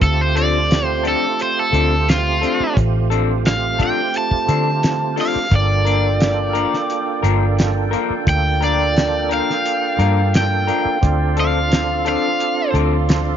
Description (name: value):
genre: straight-eighth soul blues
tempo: 87 BPM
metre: 4/4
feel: straight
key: D minor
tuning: A4 = 440 Hz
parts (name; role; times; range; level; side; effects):
- cranked stack guitar; melody; 0.0-12.7 s; F4 to A5; -20 LUFS; left 1 dB; overdrive
- percussive tonewheel organ; accompaniment; 0.0-13.4 s; A3 to A4; -24 LUFS; right 14 dB; slow rotary speaker, overdrive, chorus vibrato
- vintage muted fingered electric bass; bass; 0.0-13.4 s; G1 to D3; -19 LUFS; equal; none
- cloth-damped thuddy drum kit; drums; 0.0-13.3 s; hi-hat, kick drum, snare drum; -20 LUFS; equal; none
- electric guitar through a small old amp; stabs; 0.4-13.0 s; F3 to Bb4; -24 LUFS; left 12 dB; none
- clear horn section; sustained chords; 5.5-13.4 s; D5 to C6; -29 LUFS; left 3 dB; none
room: light reverb, small room reverb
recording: 1960s-style stereo with parts hard left and right, nothing above 7.5 kHz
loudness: -15 LUFS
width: side -9 dB against mid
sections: 0.0-13.4 A section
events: none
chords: 0.0 Dm7; 5.5 Gm7; 11.0 Dm7